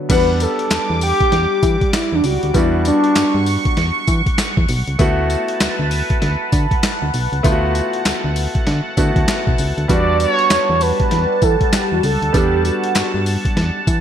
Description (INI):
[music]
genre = R&B, new jack swing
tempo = 98 BPM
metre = 4/4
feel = swing 62% on 16ths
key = E dorian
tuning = A4 = 440 Hz
[part]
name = clear concert grand piano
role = accompaniment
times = 0.0-14.0 s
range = G3 to F#5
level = -23 LUFS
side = right 1 dB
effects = none
[part]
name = phased analog pad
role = sustained chords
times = 0.0-14.0 s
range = G3 to D6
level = -24 LUFS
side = right 1 dB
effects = phaser, chorus
[part]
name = mellow horn-like synth lead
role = melody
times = 0.1-3.7, 9.9-13.6 s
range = D4 to D5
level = -17 LUFS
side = equal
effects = chorus, phaser
[part]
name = solid FM bass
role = bass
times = 0.1-14.0 s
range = B1 to E3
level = -19 LUFS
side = equal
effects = none
[part]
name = boom bap sampler-style drum kit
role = drums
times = 0.1-14.0 s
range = crash cymbal, handclaps, hi-hat, kick drum, snare drum, tambourine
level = -19 LUFS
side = equal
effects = gated reverb
[part]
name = group handclap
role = percussion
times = 0.7-13.1 s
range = none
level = -32 LUFS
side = left 2 dB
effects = none
[sound]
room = light reverb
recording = bright 1980s-style digital production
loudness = -14 LUFS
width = side -9 dB against mid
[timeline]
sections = 0.1-14.0 A section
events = none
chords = 0.1 Em9; 5.0 D6; 9.9 Em9